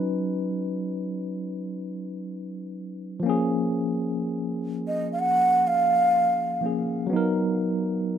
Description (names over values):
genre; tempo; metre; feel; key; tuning
contemporary R&B; 62 BPM; 4/4; swing 54% on 16ths; unclear; A4 = 440 Hz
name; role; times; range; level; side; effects
tine electric piano; accompaniment; 0.0-8.2 s; E#3 to B4; -26 LUFS; left 1 dB; medium stereo tremolo
breathy bansuri; melody; 4.9-6.6 s; D#5 to F#5; -21 LUFS; right 1 dB; ping-pong delay
room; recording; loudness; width
wet studio reverb, RT60 0.6 s; rough home demo mix; -23 LUFS; side -9 dB against mid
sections
0.0-8.2 A section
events
none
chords
0.0 C#9sus4; 3.2 A#m7; 7.1 Bmaj7